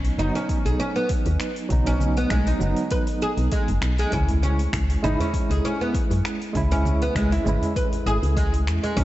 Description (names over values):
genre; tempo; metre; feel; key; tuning
organic downtempo; 99 BPM; 4/4; swing 54% on 16ths; C# minor; A4 = 441 Hz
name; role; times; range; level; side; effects
tine electric piano; accompaniment; 0.0-9.0 s; F#3 to E4; -28 LUFS; right 2 dB; medium tremolo, sidechain pumping, tape echo
oud; arpeggios; 0.0-9.0 s; G#3 to B4; -27 LUFS; equal; tape echo
woody FM bass; bass; 0.0-9.0 s; F#1 to F#2; -23 LUFS; equal; none
deep house drum kit; drums; 0.0-9.0 s; congas, finger snaps, hi-hat, shaker; -32 LUFS; right 2 dB; overdrive, studio reverb
electronic kick drum; drums; 0.5-9.0 s; none; -26 LUFS; equal; overdrive, studio reverb
djembe; percussion; 4.1-9.0 s; none; -33 LUFS; right 1 dB; none
room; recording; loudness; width
light reverb; dark, warm production, nothing above 7.9 kHz; -20 LUFS; side -15 dB against mid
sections
0.0-9.0 A section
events
none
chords
0.0 B; 4.1 C#m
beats
0.49 1.10 | 1.70 2.31 2.92 3.52 | 4.13 4.74 5.34 5.95 | 6.55 7.16 7.76 8.37 | 8.98